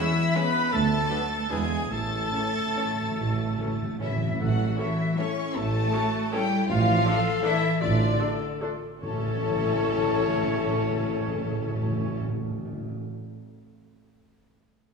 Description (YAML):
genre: classical, orchestral ballroom waltz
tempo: 134-174 BPM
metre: 3/4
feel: rubato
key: A major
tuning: A4 = 441 Hz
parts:
  - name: rich symphonic violin section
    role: melody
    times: 0.0-12.2 s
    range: A4 to B6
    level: -34 LUFS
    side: left 6 dB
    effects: none
  - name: bright oboe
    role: second line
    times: 0.0-4.0, 9.0-12.2 s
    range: E4 to C#5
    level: -36 LUFS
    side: right 1 dB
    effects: none
  - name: concert flute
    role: second line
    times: 0.0-12.2 s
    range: D5 to C#6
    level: -35 LUFS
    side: left 2 dB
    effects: none
  - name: rich symphonic violin section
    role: second line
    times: 0.0-12.2 s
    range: D4 to B5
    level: -36 LUFS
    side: left 2 dB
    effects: none
  - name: warm studio viola section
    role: accompaniment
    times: 0.0-12.2 s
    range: C#4 to B4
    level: -35 LUFS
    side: left 2 dB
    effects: none
  - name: warm French horn section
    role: sustained chords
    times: 0.0-12.2 s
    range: E3 to A4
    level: -35 LUFS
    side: left 6 dB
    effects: none
  - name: warm trumpet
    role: stabs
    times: 0.0-12.2 s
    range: E4 to D5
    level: -35 LUFS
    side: equal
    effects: none
  - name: rich studio cello section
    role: bass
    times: 0.0-12.2 s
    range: D3 to C#4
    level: -31 LUFS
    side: right 1 dB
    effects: none
  - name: timpani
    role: percussion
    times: 0.0-4.9, 9.0-13.0 s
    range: E2 to A2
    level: -32 LUFS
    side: equal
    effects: none
  - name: mellow tuba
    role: bass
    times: 0.7-12.2 s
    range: E1 to D2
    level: -33 LUFS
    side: right 2 dB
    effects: none
  - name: warm studio double bass section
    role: bass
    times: 0.7-12.2 s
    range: A1 to E2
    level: -31 LUFS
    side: right 3 dB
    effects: none
  - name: warm clarinet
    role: second line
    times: 4.4-12.2 s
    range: E4 to A4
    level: -33 LUFS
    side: left 6 dB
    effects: none
room: wet scoring stage reverb, RT60 1.8 s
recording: studio ambience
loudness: -23 LUFS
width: side -5 dB against mid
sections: 0.0-4.4 A section; 4.4-9.0 B section; 9.0-11.5 C section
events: timpani fill 1.9-4.4; slowing down 6.1-9.0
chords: 0.0 C#m/E; 0.7 Bm/D; 1.5 E7; 1.9 A; 4.4 A7; 6.7 Dm/A; 9.0 A